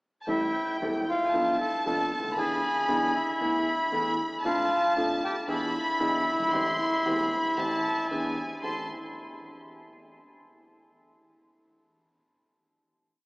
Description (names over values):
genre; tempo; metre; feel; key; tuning
tango; 115 BPM; 4/4; rubato; A minor; A4 = 436 Hz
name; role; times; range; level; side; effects
warm studio violin section; second line; 0.2-8.9 s; G5 to C6; -32 LUFS; equal; none
bandoneon; melody; 0.3-8.9 s; E4 to A5; -28 LUFS; equal; none
warm grand piano; accompaniment; 0.3-8.9 s; E1 to A4; -31 LUFS; equal; none
room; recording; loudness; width
wet cathedral reverb, RT60 4.8 s; recorded in a church or concert hall, small speaker sound; -25 LUFS; side -28 dB against mid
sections
0.0-0.3 pickup bar; 0.3-8.6 A section; 8.6-10.7 final chord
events
none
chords
0.3 Am7; 1.3 Bm7b5; 2.4 E7; 3.4 Asus2/E; 4.4 Dm/F; 5.5 E7; 6.5 Am7; 8.1 E7; 8.6 Am7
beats
| 0.27 0.80 1.32 1.84 | 2.37 2.88 3.41 3.93 | 4.45 4.96 5.48 6.00 | 6.53 7.05 7.57 8.11 | 8.64